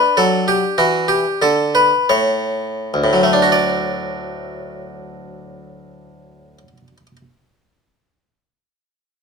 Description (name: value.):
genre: classical, baroque-style suite movement for harpsichord.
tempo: 41-51 BPM.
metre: 3/4.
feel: rubato.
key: D major.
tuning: A4 = 440 Hz.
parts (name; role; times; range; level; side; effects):
harpsichord; solo; 0.0-7.2 s; D2 to D5; -15 LUFS; equal; none.
room: light reverb.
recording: minimal, uncompressed stereo recording.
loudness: -14 LUFS.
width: side -5 dB against mid.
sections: 0.0-3.5 A section; 3.5-7.7 B section.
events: slowing down 0.0-3.5.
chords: 0.0 D; 2.1 N.C.; 3.5 D.